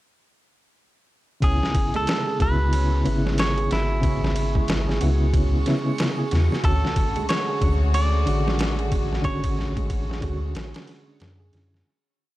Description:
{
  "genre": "trip hop",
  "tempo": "92 BPM",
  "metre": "4/4",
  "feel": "swing 60% on 16ths",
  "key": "C# phrygian",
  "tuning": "A4 = 439 Hz",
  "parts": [
    { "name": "semi-hollow electric guitar", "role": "melody", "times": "1.4-11.2 s", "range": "E4 to D5", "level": "-28 LUFS", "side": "equal", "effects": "vintage 12-bit sampler grit, tape echo" },
    { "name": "reed electric piano", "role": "accompaniment", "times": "1.4-11.9 s", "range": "C#3 to F#4", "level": "-28 LUFS", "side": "equal", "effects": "fast tremolo" },
    { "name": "felt-muted upright piano", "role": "arpeggios", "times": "1.4-11.9 s", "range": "G#3 to G#4", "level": "-31 LUFS", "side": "right 5 dB", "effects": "vintage 12-bit sampler grit, tape echo" },
    { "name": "soft dub sub bass", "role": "bass", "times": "1.4-11.8 s", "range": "G#1 to F#2", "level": "-23 LUFS", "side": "equal", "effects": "none" },
    { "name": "trip hop sampler-style drum kit", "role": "drums", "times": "1.4-11.9 s", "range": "kick drum, ride cymbal, snare drum", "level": "-26 LUFS", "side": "equal", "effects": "none" },
    { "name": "backwards swelling texture", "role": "texture", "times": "3.1-11.9 s", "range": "C#6", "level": "-40 LUFS", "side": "left 1 dB", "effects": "built-in reverb" },
    { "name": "rich symphonic string section", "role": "sustained chords", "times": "6.6-11.8 s", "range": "D3 to F#4", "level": "-35 LUFS", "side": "left 2 dB", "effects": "vintage 12-bit sampler grit" }
  ],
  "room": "little or no reverb",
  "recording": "dark, warm production",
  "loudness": "-20 LUFS",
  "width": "side -16 dB against mid",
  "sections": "1.4-11.9 groove",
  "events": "fade-out 8.4-11.9",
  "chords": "1.4 C#m7; 6.6 Dmaj7",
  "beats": "| 1.42 2.08 2.73 3.38 | 4.03 4.68 5.34 5.99 | 6.64 7.29 7.95 8.60 | 9.25 9.90 10.55 11.21"
}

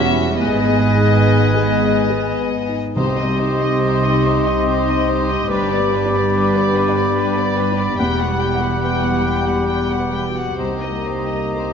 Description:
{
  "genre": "cinematic, emotional film score for orchestra",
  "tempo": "71 BPM",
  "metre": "3/4",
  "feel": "uneven beats, rubato",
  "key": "unclear",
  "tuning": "A4 = 440 Hz",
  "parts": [
    { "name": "warm studio violin section", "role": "melody", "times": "0.0-11.7 s", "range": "B4 to G5", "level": "-25 LUFS", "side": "left 5 dB", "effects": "none" },
    { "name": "clear clarinet", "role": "second line", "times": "0.0-11.7 s", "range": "G4 to Ab4", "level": "-27 LUFS", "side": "left 1 dB", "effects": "none" },
    { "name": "dark studio violin section", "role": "second line", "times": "0.0-11.7 s", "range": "Eb4 to B4", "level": "-29 LUFS", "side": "left 6 dB", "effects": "none" },
    { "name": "hollow concert flute", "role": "second line", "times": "0.0-11.7 s", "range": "Eb5 to C6", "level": "-26 LUFS", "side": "left 3 dB", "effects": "none" },
    { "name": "warm oboe", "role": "second line", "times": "0.0-11.7 s", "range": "B4 to F#5", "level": "-26 LUFS", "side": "right 2 dB", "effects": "none" },
    { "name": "dark baby grand piano", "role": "accompaniment", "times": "0.0-11.7 s", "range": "C2 to F#5", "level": "-24 LUFS", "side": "left 1 dB", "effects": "none" },
    { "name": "rich studio viola section", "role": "accompaniment", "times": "0.0-11.7 s", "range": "G3 to Eb4", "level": "-26 LUFS", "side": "right 1 dB", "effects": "none" },
    { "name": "dark French horn section", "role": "sustained chords", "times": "0.0-11.7 s", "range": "G3 to Ab4", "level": "-25 LUFS", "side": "left 7 dB", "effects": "none" },
    { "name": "dark studio cello section", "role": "bass", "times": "0.0-11.7 s", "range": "C2 to C3", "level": "-23 LUFS", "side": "right 3 dB", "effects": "none" },
    { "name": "dark studio double bass section", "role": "bass", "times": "0.0-11.7 s", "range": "E1 to C2", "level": "-24 LUFS", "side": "right 6 dB", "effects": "none" },
    { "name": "timpani", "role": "percussion", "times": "3.0-4.2 s", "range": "C3", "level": "-25 LUFS", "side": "equal", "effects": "none" }
  ],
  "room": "moderate concert hall reverb, RT60 2.3 s",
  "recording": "nothing above 7.6 kHz",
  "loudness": "-15 LUFS",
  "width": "side -7 dB against mid",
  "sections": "0.0-11.7 A section",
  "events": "none",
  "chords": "0.4 Abm; 3.0 Cm; 5.5 G; 8.0 Emadd9; 10.6 Cm7",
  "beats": "| 0.39 1.25 2.10 | 2.96 3.82 4.67 | 5.50 6.33 7.17 | 7.98 8.81 9.68 | 10.59 11.53"
}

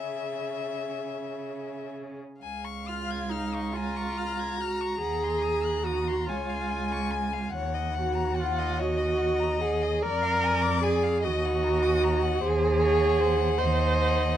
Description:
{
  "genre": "classical, slow romantic movement for string quartet",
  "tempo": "41-52 BPM (dotted quarters)",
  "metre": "6/8",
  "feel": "rubato",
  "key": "Db major",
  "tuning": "A4 = 440 Hz",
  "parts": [
    { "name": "rich violin", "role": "melody", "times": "0.0-14.4 s", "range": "Db5 to Ab6", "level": "-35 LUFS", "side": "left 10 dB", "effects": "none" },
    { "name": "dark violin", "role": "second line", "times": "0.0-14.4 s", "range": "G#4 to Bb5", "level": "-34 LUFS", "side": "left 3 dB", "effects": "none" },
    { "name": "warm viola", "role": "accompaniment", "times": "0.0-14.4 s", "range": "C#4 to B#4", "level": "-28 LUFS", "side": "right 2 dB", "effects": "none" },
    { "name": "warm cello", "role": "bass", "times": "0.0-14.4 s", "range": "Db2 to C#3", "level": "-30 LUFS", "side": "right 2 dB", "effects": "none" }
  ],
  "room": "light reverb",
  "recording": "dark, warm production",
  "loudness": "-25 LUFS",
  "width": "side -11 dB against mid",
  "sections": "0.0-2.4 A section; 2.4-14.4 B section",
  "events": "none",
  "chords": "0.0 C#m; 2.4 Db; 5.0 Cdim/Eb; 6.3 Db; 7.5 Ebm; 10.0 Ddim/F; 11.2 Ebm; 12.4 G#7/D#",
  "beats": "1.00 | 2.42 3.74 | 5.01 6.28 | 7.54 8.80 | 10.04 11.25 | 12.43 13.59"
}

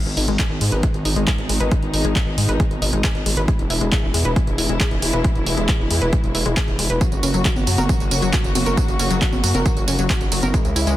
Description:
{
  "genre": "uplifting trance",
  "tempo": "136 BPM",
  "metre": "4/4",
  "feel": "straight",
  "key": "unclear",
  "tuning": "A4 = 440 Hz",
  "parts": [
    { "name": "dark studio string section", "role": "sustained chords", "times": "0.0-11.0 s", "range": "B2 to F#4", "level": "-26 LUFS", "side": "equal", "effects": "sidechain pumping, low-pass filter" },
    { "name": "gritty driven synth bass", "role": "bass", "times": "0.1-11.0 s", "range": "E1 to G#2", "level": "-22 LUFS", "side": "equal", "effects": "sidechain pumping" },
    { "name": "punchy analog drum machine", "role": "drums", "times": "0.1-11.0 s", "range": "congas, handclaps, hi-hat, tambourine", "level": "-24 LUFS", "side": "right 1 dB", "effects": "none" },
    { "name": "analog pluck", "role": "arpeggios", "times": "0.2-10.9 s", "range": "F#3 to B4", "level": "-26 LUFS", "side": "left 3 dB", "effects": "chorus, sidechain pumping, tape echo" },
    { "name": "electronic kick drum", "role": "drums", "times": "0.4-10.6 s", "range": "none", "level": "-20 LUFS", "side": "equal", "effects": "none" }
  ],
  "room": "digital ambience",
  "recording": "dense, heavily limited modern master",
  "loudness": "-17 LUFS",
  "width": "side -14 dB against mid",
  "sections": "0.0-11.0 A section",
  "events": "none",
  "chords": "0.0 G#m; 3.5 E; 7.0 F#",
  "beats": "0.39 0.83 1.27 | 1.72 2.16 2.60 3.04 | 3.48 3.92 4.36 4.80 | 5.25 5.69 6.13 6.57 | 7.01 7.45 7.89 8.33 | 8.77 9.21 9.66 10.10 | 10.54"
}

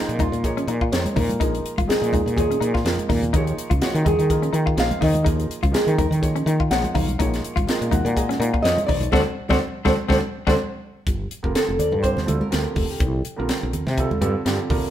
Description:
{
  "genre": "electric jazz fusion",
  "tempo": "124 BPM",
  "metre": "4/4",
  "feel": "swing 54% on 16ths",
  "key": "Eb minor, G minor from 11.1 s",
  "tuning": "A4 = 440 Hz",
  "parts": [
    { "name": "flamenco guitar", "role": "melody", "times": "0.0-13.4 s", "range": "Eb4 to Gb5", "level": "-25 LUFS", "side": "equal", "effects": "none" },
    { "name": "warm grand piano", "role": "accompaniment", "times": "0.0-14.9 s", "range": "D3 to Eb5", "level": "-29 LUFS", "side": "right 3 dB", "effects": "none" },
    { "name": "semi-hollow electric guitar", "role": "stabs", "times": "0.0-10.5 s", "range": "C4 to F#4", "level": "-28 LUFS", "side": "left 6 dB", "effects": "none" },
    { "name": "woody fretless electric bass", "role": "bass", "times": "0.1-14.9 s", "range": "F1 to Eb3", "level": "-23 LUFS", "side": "equal", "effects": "none" },
    { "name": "crisp fusion drum kit", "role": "drums", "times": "0.1-14.8 s", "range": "hi-hat, kick drum, snare drum", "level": "-25 LUFS", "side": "equal", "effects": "none" },
    { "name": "congas", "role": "percussion", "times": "0.2-14.8 s", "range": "none", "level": "-28 LUFS", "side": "right 2 dB", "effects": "none" }
  ],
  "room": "moderate stone room reverb, RT60 1.2 s",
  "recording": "band playing live in one room",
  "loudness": "-19 LUFS",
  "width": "side -11 dB against mid",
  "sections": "0.0-11.1 A section; 11.1-14.9 B section",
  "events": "drum fill 3.0-3.3, 10.6-11.1; band accent 9.1-11.1; grand piano fill 10.1-11.1",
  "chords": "0.0 Bbm7; 3.3 Eb9sus4; 7.2 Bbm7; 9.1 D7; 11.1 Gm7; 13.0 C5",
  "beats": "0.44 0.92 | 1.41 1.89 2.37 2.85 | 3.33 3.81 4.30 4.78 | 5.26 5.75 6.23 6.71 | 7.19 7.68 8.16 8.64 | 9.13 9.61 10.10 10.58 | 11.07 11.55 12.04 12.52 | 13.01 13.49 13.98 14.46"
}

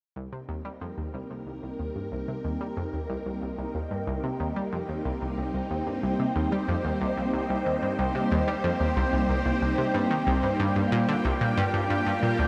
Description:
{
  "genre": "ambient, sequencer-driven space music",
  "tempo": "92 BPM",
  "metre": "4/4",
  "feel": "straight",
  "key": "C minor",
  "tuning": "A4 = 440 Hz",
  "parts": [
    { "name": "phased string machine", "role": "sustained chords", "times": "0.2-12.5 s", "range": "G3 to C5", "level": "-31 LUFS", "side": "equal", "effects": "ensemble chorus, phaser" },
    { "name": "analog pluck", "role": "riff", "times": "0.2-12.5 s", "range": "C2 to G3", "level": "-31 LUFS", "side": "equal", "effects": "chorus, tape echo" },
    { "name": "bubbling stepped-filter texture", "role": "texture", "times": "0.2-12.5 s", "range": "G4 to G5", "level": "-36 LUFS", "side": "equal", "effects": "chorus, built-in reverb" }
  ],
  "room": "wet huge ambient reverb, RT60 7.3 s",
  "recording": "none",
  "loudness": "-28 LUFS",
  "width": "mono",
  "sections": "0.2-12.5 A section",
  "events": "fade-in on synth arpeggio sound 0.2-12.5; fade-in on string machine 0.2-12.5; fade-in on synth texture 0.2-12.5",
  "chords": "0.2 Cm7; 10.6 Gm7",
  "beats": "| 0.16 0.81 1.47 2.12 | 2.77 3.42 4.08 4.73 | 5.38 6.03 6.68 7.34 | 7.99 8.64 9.29 9.95 | 10.60 11.25 11.90"
}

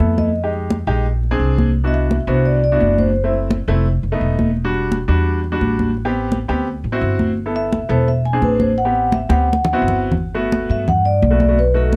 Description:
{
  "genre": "Afro-Cuban jazz",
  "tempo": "171 BPM",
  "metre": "4/4",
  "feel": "straight",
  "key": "G major",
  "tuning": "A4 = 442 Hz",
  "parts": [
    { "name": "vibraphone with soft mallets", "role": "melody", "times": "0.0-3.3, 7.6-12.0 s", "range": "A4 to G#5", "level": "-22 LUFS", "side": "equal", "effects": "plate reverb" },
    { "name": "clear baby grand piano", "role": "accompaniment", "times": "0.0-12.0 s", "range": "G3 to A4", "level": "-24 LUFS", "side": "equal", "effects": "none" },
    { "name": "upright bass", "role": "bass", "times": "0.0-12.0 s", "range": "E1 to G2", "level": "-21 LUFS", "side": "equal", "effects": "none" },
    { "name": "congas", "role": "percussion", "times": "0.0-12.0 s", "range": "none", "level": "-23 LUFS", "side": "equal", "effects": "none" }
  ],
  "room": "light reverb",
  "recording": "dark, warm production",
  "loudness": "-17 LUFS",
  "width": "mono",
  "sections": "0.0-10.2 A section; 10.2-12.0 B section",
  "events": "drum fill 9.3-10.2",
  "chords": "0.3 Fm7; 1.1 Bb9; 1.8 Cmaj9#11; 3.2 F#m7b5; 3.9 F7#11; 4.6 Em9; 6.0 Am7; 6.7 D9; 7.4 G69; 8.1 E7b13; 8.8 Am7; 9.5 D13; 10.2 Gmaj7",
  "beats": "0.00 | 0.35 0.70 1.05 1.40 | 1.75 2.10 2.46 2.81 | 3.16 3.51 3.86 4.21 | 4.56 4.91 5.26 5.61 | 5.96 6.32 6.67 7.02 | 7.37 7.72 8.07 8.42 | 8.77 9.12 9.47 9.82 | 10.17 10.53 10.88 11.22 | 11.58 11.93"
}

